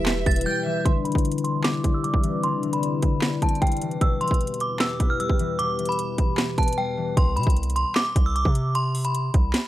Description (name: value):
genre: hip hop, trap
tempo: 152 BPM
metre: 4/4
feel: half-time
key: C major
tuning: A4 = 440 Hz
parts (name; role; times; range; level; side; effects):
- metallic FM bell; melody; 0.0-9.7 s; G5 to A6; -27 LUFS; right 1 dB; chorus, low-pass filter, slapback echo
- rich studio violin section; second line; 0.0-0.8 s; E5 to G5; -32 LUFS; right 6 dB; slapback echo
- concert harp; accompaniment; 0.0-9.7 s; B2 to C4; -28 LUFS; left 5 dB; low-pass filter
- dark analog pad; sustained chords; 0.0-7.1 s; E2 to D5; -32 LUFS; equal; chorus, low-pass filter
- hard-hitting 808-style bass; bass; 0.0-0.5, 7.2-9.5 s; E1 to C3; -24 LUFS; equal; none
- trap drum kit; drums; 0.1-9.6 s; handclaps, hi-hat, kick drum, snare drum; -23 LUFS; equal; overdrive
room: little or no reverb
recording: none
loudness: -21 LUFS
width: side -14 dB against mid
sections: 0.9-7.2 A section; 7.2-9.7 B section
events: break 0.5-0.9, 6.8-7.2; filter sweep 0.9-7.2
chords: 0.0 Em; 0.9 Cadd9; 4.0 Em; 7.2 Csus2